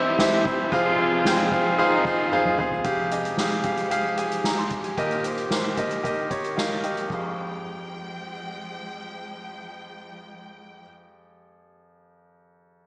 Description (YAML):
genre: piano-driven pop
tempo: 113 BPM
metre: 4/4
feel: straight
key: F minor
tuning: A4 = 437 Hz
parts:
  - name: muted French horn section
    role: second line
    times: 0.0-2.6 s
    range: Eb3 to F4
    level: -28 LUFS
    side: left 1 dB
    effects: tape echo, slapback echo
  - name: clear grand piano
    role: accompaniment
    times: 0.0-12.9 s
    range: C2 to C6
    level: -23 LUFS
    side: equal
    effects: none
  - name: dark studio string section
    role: sustained chords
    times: 0.0-10.8 s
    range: Eb3 to G5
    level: -34 LUFS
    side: equal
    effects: none
  - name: soft-mallet drum kit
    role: drums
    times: 0.1-7.2 s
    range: china cymbal, hi-hat, kick drum, ride cymbal, snare drum, toms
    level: -28 LUFS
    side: equal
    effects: none
room: wet scoring stage reverb, RT60 1.6 s, small room reverb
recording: big arena sound, small speaker sound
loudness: -21 LUFS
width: side -27 dB against mid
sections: 0.0-2.8 A section; 2.8-7.1 B section; 7.1-11.3 C section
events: drum fill 2.3-2.8; grand piano fill 6.3-7.1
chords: 0.0 C; 0.7 Fmadd9; 5.0 Eb; 7.1 Fmadd9